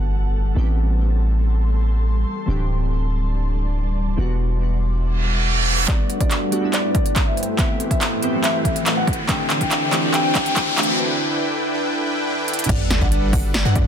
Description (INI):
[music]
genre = future bass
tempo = 141 BPM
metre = 4/4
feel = half-time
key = G major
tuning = A4 = 440 Hz
[part]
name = glassy digital keys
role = accompaniment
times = 0.0-11.0 s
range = E3 to G4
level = -27 LUFS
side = right 1 dB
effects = chorus, phaser, sidechain pumping, ping-pong delay
[part]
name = ethereal airy pad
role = sustained chords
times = 0.0-13.9 s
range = D2 to D6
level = -32 LUFS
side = left 1 dB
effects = ensemble chorus, built-in reverb, sidechain pumping
[part]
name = long sustained 808-style bass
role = bass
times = 0.0-5.9, 12.7-13.9 s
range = D1 to G2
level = -19 LUFS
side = equal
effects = sidechain pumping
[part]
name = sub drop, reverse cymbal and riser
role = sound effects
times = 0.0-0.8, 5.2-13.9 s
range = none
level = -25 LUFS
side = right 1 dB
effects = none
[part]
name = dark grand piano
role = melody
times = 5.9-13.9 s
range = D5 to G5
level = -26 LUFS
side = left 3 dB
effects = sidechain pumping, ping-pong delay
[part]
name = soft supersaw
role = riff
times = 5.9-13.9 s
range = D3 to G5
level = -24 LUFS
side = equal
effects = sidechain pumping, low-pass filter, ping-pong delay
[part]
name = big-room dance drum kit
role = drums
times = 5.9-13.8 s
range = crash cymbal, handclaps, hi-hat, snare drum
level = -23 LUFS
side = equal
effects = none
[part]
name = electronic kick drum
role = drums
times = 5.9-13.8 s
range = none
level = -21 LUFS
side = equal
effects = none
[part]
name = wide unison pluck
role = arpeggios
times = 12.7-13.9 s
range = F#5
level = -32 LUFS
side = left 2 dB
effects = analog chorus, sidechain pumping
[sound]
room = moderate digital room reverb, RT60 1.1 s, digital ambience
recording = dense, heavily limited modern master, high-pass filter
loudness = -17 LUFS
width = side -9 dB against mid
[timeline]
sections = 0.0-5.9 A section; 5.9-12.7 B section; 12.7-13.9 C section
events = impact 0.0-0.8, 12.7-13.9; reverse cymbal 5.2-5.9; build-up 5.9-12.7; drum fill 5.9-11.0, 12.5; riser 5.9-11.0; filter sweep on supersaw synth 5.9-12.7; filter sweep 5.9-12.7; break 11.0-12.7; drop 12.7-13.9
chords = 0.0 Gmaj9; 0.6 Am9; 2.5 D7sus4; 4.2 Em9; 5.9 Gmaj9; 7.4 Am9; 9.3 D7sus4; 11.0 Em7; 12.7 Gmaj9